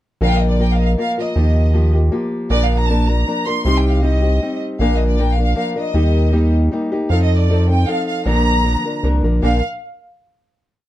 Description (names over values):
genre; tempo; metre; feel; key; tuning
mexican folk, mariachi; 156 BPM; 3/4; straight; Bb major; A4 = 444 Hz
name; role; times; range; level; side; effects
rich studio violin section; melody; 0.2-9.6 s; D5 to C6; -22 LUFS; equal; none
nylon-string guitar; accompaniment; 0.2-9.6 s; Bb2 to Bb4; -20 LUFS; left 2 dB; none
rubbery square bass; bass; 0.2-9.6 s; Bb1 to F2; -15 LUFS; equal; none
room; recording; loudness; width
little or no reverb; dark, warm production; -14 LUFS; side -14 dB against mid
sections
0.2-9.4 A section; 9.4-10.6 final chord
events
none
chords
0.2 Bb; 1.4 Ebadd9; 2.5 Bb; 3.6 Cm; 4.8 Bb; 5.9 Eb; 7.1 F7; 8.3 Bb